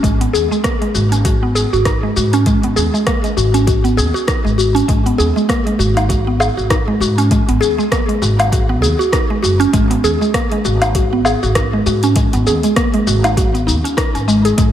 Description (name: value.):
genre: organic downtempo.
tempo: 99 BPM.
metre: 4/4.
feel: swing 57% on 16ths.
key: G# minor.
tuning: A4 = 445 Hz.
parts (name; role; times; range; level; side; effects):
mallet-like synth pluck; arpeggios; 0.0-14.7 s; G#3 to G#4; -16 LUFS; equal; chorus, phaser, digital delay, slapback echo.
upright bass; bass; 0.0-14.7 s; F#1 to G#2; -17 LUFS; equal; sidechain pumping.
afro-pop drum kit; drums; 0.0-14.7 s; hi-hat, rim click, shaker, woodblock; -21 LUFS; left 1 dB; overdrive, slapback echo.
electronic kick drum; drums; 0.0-14.7 s; none; -18 LUFS; equal; overdrive.
room: wet concert hall reverb, RT60 2.4 s.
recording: big arena sound.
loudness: -12 LUFS.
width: side -10 dB against mid.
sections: 0.0-14.6 A section.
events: none.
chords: 0.0 G#5.